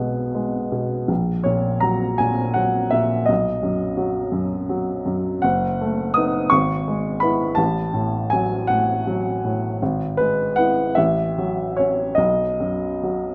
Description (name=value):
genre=classical, romantic character piece for solo piano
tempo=46-58 BPM (dotted quarters)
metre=6/8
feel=rubato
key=B major, E major from 5.4 s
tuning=A4 = 440 Hz
part: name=warm upright piano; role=solo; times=0.0-13.3 s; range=F#1 to D#6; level=-21 LUFS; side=equal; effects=none
room=moderate concert hall reverb, RT60 1.9 s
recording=close, detailed microphones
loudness=-21 LUFS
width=mono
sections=0.0-13.3 A section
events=none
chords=0.0 G#m/B; 1.1 F#/A#; 3.3 B; 5.4 B7/F#; 6.5 E/G#; 7.6 F#m/A; 9.8 E/G#; 11.0 F#m7/A; 12.2 B